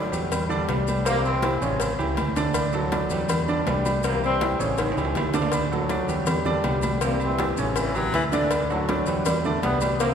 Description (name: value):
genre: latin, salsa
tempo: 161 BPM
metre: 4/4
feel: straight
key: unclear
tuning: A4 = 440 Hz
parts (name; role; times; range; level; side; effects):
- mellow trombone section; melody; 0.0-10.1 s; A2 to C4; -28 LUFS; left 1 dB; none
- clear baby grand piano; accompaniment; 0.0-10.1 s; C3 to D5; -27 LUFS; right 2 dB; none
- fingered electric bass; bass; 0.1-10.1 s; A1 to E2; -28 LUFS; equal; none
- agogo bells and timbales; percussion; 0.1-10.0 s; none; -32 LUFS; right 2 dB; none
- maracas; percussion; 0.1-10.1 s; none; -40 LUFS; left 6 dB; none
- congas; percussion; 0.3-10.1 s; none; -32 LUFS; left 1 dB; none
- cowbell; percussion; 0.3-10.1 s; none; -32 LUFS; left 4 dB; none
- clear baritone saxophone; second line; 7.6-8.6 s; D3 to F#3; -30 LUFS; left 2 dB; none
room: wet cathedral reverb, RT60 5.0 s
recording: recorded in a church or concert hall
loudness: -21 LUFS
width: side -7 dB against mid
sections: 0.0-10.1 A section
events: drum fill 4.8-5.5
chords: 0.3 Em7; 1.1 C; 1.8 A7; 2.6 D; 3.3 Em7; 4.0 C; 4.8 A7; 5.5 D; 6.3 Em7; 7.0 C; 7.8 A7; 8.5 D; 9.3 Em7